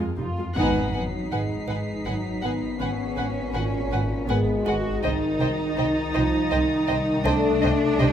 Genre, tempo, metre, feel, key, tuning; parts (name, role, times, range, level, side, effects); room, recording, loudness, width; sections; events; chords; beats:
cinematic; 81 BPM; 3/4; straight; A4 = 442 Hz
warm chamber viola section; accompaniment; 0.0-8.1 s; G3 to C5; -34 LUFS; left 1 dB
dark studio cello section; bass; 0.0-8.1 s; F2 to F#4; -26 LUFS; right 2 dB
swarming drone; drone; 0.0-8.1 s; G#1 to F2; -32 LUFS; left 1 dB; built-in reverb
music box; texture; 0.0-8.1 s; G#4 to A#5; -35 LUFS; right 2 dB
warm studio double bass section; bass; 0.2-8.1 s; F1 to C2; -28 LUFS; right 2 dB
warm studio violin section; melody; 0.6-8.1 s; G5 to G#5; -37 LUFS; left 1 dB
warm studio violin section; second line; 0.6-8.1 s; Eb5 to F#5; -32 LUFS; equal
dark French horn section; sustained chords; 0.6-8.1 s; A#2 to B3; -28 LUFS; left 5 dB
impact; sound effects; 0.6-2.8 s; -32 LUFS; equal
dark studio violin section; texture; 0.6-8.1 s; Eb6 to B#6; -39 LUFS; left 3 dB
moderate recital hall reverb, RT60 1.7 s; close, detailed microphones; -22 LUFS; side -9 dB against mid
0.6-8.1 A section
band accent 0.6-1.3; impact 0.6-2.8
0.0 Fm; 0.6 G#m7; 5.0 Cm
| 0.56 1.31 2.06 | 2.81 3.55 4.29 | 5.04 5.78 6.52 | 7.26 8.00